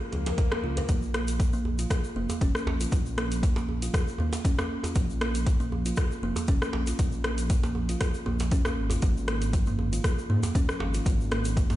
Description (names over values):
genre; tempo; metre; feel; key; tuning
afro house; 118 BPM; 4/4; swing 54% on 16ths; Bb minor; A4 = 440 Hz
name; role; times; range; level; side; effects
swell; sound effects; 0.0-0.9 s; none; -38 LUFS; left 5 dB; none
kalimba; arpeggios; 0.1-11.8 s; F3 to Bb4; -33 LUFS; right 2 dB; sidechain pumping, digital delay
dark detuned saw bass; bass; 0.1-11.8 s; F1 to Ab2; -30 LUFS; equal; sidechain pumping
afro-pop drum kit; drums; 0.1-11.8 s; hi-hat, rim click, toms; -34 LUFS; equal; none
djembe; percussion; 0.1-11.8 s; none; -36 LUFS; right 2 dB; none
electronic kick drum; drums; 0.4-11.7 s; none; -25 LUFS; equal; none
tube shaker; percussion; 0.9-11.8 s; none; -43 LUFS; left 5 dB; none
room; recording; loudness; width
light reverb; played on a big sound system in a bare room, stone room reverb, nothing above 10.7 kHz; -25 LUFS; side -15 dB against mid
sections
0.0-11.8 A section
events
swell 0.0-0.9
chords
0.0 Gbmaj7 (rootless); 0.9 Bb5; 9.0 Absus2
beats
0.38 | 0.89 1.40 1.91 2.42 | 2.92 3.43 3.94 4.45 | 4.96 5.47 5.97 6.48 | 6.99 7.50 8.01 8.52 | 9.03 9.53 10.04 10.55 | 11.06 11.57